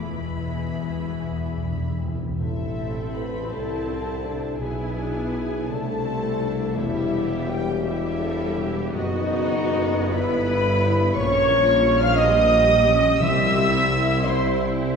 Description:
classical, slow romantic movement for symphony orchestra; 46-60 BPM (dotted quarters); 6/8; rubato; A minor; A4 = 440 Hz
muted studio violin section; melody; 0.0-14.6 s; D#5 to F6; -35 LUFS; left 2 dB
muted studio violin section; second line; 0.0-14.6 s; G#4 to F6; -34 LUFS; left 2 dB
muted chamber viola section; accompaniment; 0.0-15.0 s; E3 to A4; -30 LUFS; equal
warm French horn section; sustained chords; 0.0-14.6 s; G#3 to F5; -23 LUFS; equal
concert harp; arpeggios; 0.0-15.0 s; E2 to E5; -30 LUFS; left 6 dB
muted studio cello section; bass; 0.0-15.0 s; E2 to G4; -32 LUFS; right 2 dB
muted symphonic double bass section; bass; 0.0-15.0 s; E1 to C2; -30 LUFS; right 2 dB
timpani; percussion; 0.0-2.4, 13.2-14.2 s; E2 to C3; -30 LUFS; right 1 dB
clear tuba; bass; 2.4-15.0 s; E1 to C2; -30 LUFS; right 2 dB
wet scoring stage reverb, RT60 1.9 s; heard from further back in the room; -20 LUFS; side -6 dB against mid
0.0-2.4 A section; 2.4-15.0 B section
timpani fill 0.0-2.4
0.0 E; 2.4 Am; 4.6 E7/B; 5.7 Am/C; 6.8 Em; 8.9 B7/F#; 10.1 Em/G; 11.2 Gm7b5/Bb; 13.2 C

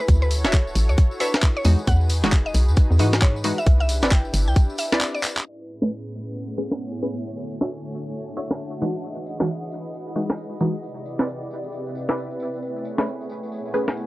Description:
UK garage, two-step garage; 134 BPM; 4/4; swing 62% on 16ths; A major; A4 = 440 Hz
mallet-like synth pluck; melody; 0.0-5.4 s; B4 to G5; -29 LUFS; equal; chorus
warm analog pad; sustained chords; 0.0-14.1 s; A2 to D#5; -34 LUFS; equal; chorus, sidechain pumping
hollow knocking FM bass; bass; 0.1-4.5 s; D1 to G#2; -20 LUFS; equal
breakbeat sampler-style drum kit; drums; 0.1-13.9 s; handclaps, hi-hat, snare drum; -24 LUFS; equal; low-pass filter on hats, low-pass filter on snare
electronic kick drum; drums; 0.1-4.7 s; -17 LUFS; equal; overdrive
tambourine; percussion; 0.1-14.1 s; -37 LUFS; left 2 dB
punchy chord stab; stabs; 0.4-14.1 s; E3 to E5; -26 LUFS; equal; chorus, phaser, cassette tape, tape echo
granular cloud pad; texture; 6.1-14.1 s; A3 to G#5; -33 LUFS; equal; built-in reverb, sidechain pumping
light reverb; dry, gritty hardware recording, transformer saturation, cassette tape, low-pass filter; -20 LUFS; side -19 dB against mid
0.0-5.5 A section; 5.5-14.1 B section
break 5.0-5.5; drum fill 5.2; filter sweep on synth stab 5.5-14.1; filter sweep on analog synth pad 5.5-14.1
0.1 Dmaj9; 1.7 Emaj9; 3.7 Cmaj9; 5.5 Amaj9; 7.2 Dmaj9; 8.8 Emaj9; 10.8 Cmaj9; 12.6 Amaj9

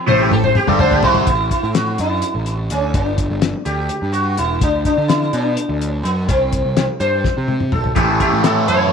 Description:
psychedelic rock; 251 BPM (eighths); 7/8; straight; A4 = 440 Hz
sitar; melody; 0.1-8.9 s; B3 to C#5; -18 LUFS; equal; tape echo
overdriven semi-hollow guitar; riff; 0.1-1.3, 8.0-8.9 s; G2 to A4; -16 LUFS; right 1 dB; phaser
fuzz picked electric bass; bass; 0.1-8.9 s; E1 to D3; -21 LUFS; right 1 dB; overdrive
cloth-damped thuddy drum kit; drums; 0.1-8.8 s; hi-hat, kick drum, snare drum, toms; -20 LUFS; left 3 dB
light reverb, small room ambience; 1960s-style stereo; -14 LUFS; side -6 dB against mid
0.0-1.3 A section; 1.3-8.9 B section
drum fill 0.0-1.3, 7.2-8.0; sitar solo 0.0-1.3
0.0 A5; 2.9 G5; 4.6 D; 6.3 C5; 8.0 A

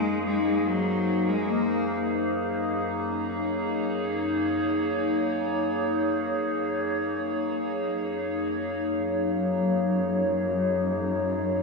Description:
ambient; free time; Gb lydian; A4 = 440 Hz
rich cello; melody; 0.0-2.1 s; Gb3 to Bb3; -28 LUFS; left 4 dB; analog delay
warbly tape-like pad; sustained chords; 0.0-11.6 s; Gb2 to Db5; -25 LUFS; left 1 dB; chorus, built-in reverb, phaser, cassette tape
dark studio cello section; bass; 8.9-11.6 s; Gb2; -28 LUFS; left 1 dB; tube saturation
wet spring reverb, RT60 1.9 s, studio reverb; home recording on cassette; -24 LUFS; side -2 dB against mid
0.0-8.9 A section; 8.9-11.6 B section
0.0 Gb69; 2.3 Gb

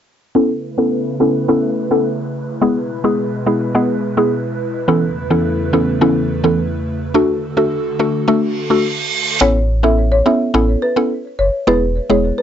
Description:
dancehall; 106 BPM; 4/4; straight; A major; A4 = 440 Hz
mallet-like synth pluck; accompaniment; 0.3-12.4 s; E3 to A4; -15 LUFS; equal; chorus, phaser, low-pass filter
airy breathy pad; sustained chords; 0.4-9.4 s; E2 to B4; -22 LUFS; right 1 dB; chorus, low-pass filter
reverse cymbal; sound effects; 8.5-9.4 s; -19 LUFS; right 6 dB
folk marimba with medium mallets; melody; 9.4-12.4 s; B4 to E5; -18 LUFS; left 1 dB; tape echo
sub bass with octave; bass; 9.4-12.3 s; E1 to A1; -17 LUFS; equal
moderate small room reverb, RT60 0.5 s; dry, gritty hardware recording, nothing above 7.8 kHz; -14 LUFS; side -9 dB against mid
0.4-9.4 A section; 9.4-12.4 B section
filter sweep 0.4-9.4; reverse cymbal 8.5-9.4
0.4 Aadd9; 2.6 E; 4.9 Aadd9/E; 7.1 D; 9.4 Aadd9; 11.7 E

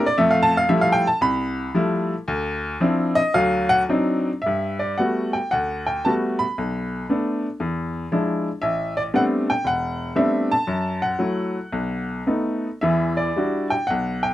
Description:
solo jazz; 104-119 BPM; 4/4; swing 67% on 8ths, rubato; G major from 4.5 s; A4 = 441 Hz
bright upright piano; solo; 0.0-14.3 s; E1 to B5; -19 LUFS; equal
light reverb; dry, close 1970s-style studio recording, faint mains hum; -20 LUFS; side -14 dB against mid
0.0-4.5 A section; 4.5-14.3 B section
upright piano solo 0.0-4.5
0.2 Fmaj9; 2.3 Dm9; 3.3 D7b9; 4.5 Gmaj9; 6.6 Bm7; 7.6 E7b9; 8.6 Am11; 10.7 F#m7; 11.7 B7; 12.8 Em9

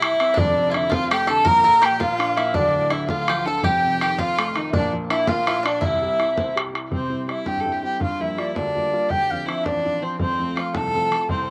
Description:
celtic folk, Celtic jig; 110 BPM (dotted quarters); 6/8; straight; C mixolydian; A4 = 438 Hz
baroque flute; melody; 0.0-11.5 s; C5 to Bb5; -24 LUFS; equal; slapback echo
bluegrass banjo; second line; 0.0-6.5 s; D4 to Bb4; -31 LUFS; equal
clear fiddle; second line; 0.0-11.5 s; C4 to Bb4; -30 LUFS; equal; slapback echo
warm upright piano; accompaniment; 0.0-11.5 s; D1 to C5; -30 LUFS; equal; slapback echo
bodhran; percussion; 0.0-11.4 s; -28 LUFS; equal
little or no reverb; recorded outdoors, with no room sound; -21 LUFS; mono
0.0-6.9 A section; 6.9-11.5 B section
0.4 F6; 1.5 Bb; 2.6 Dm; 3.6 F7; 4.7 Bb; 5.8 C; 8.0 Gm7; 9.1 Dm7; 10.2 F

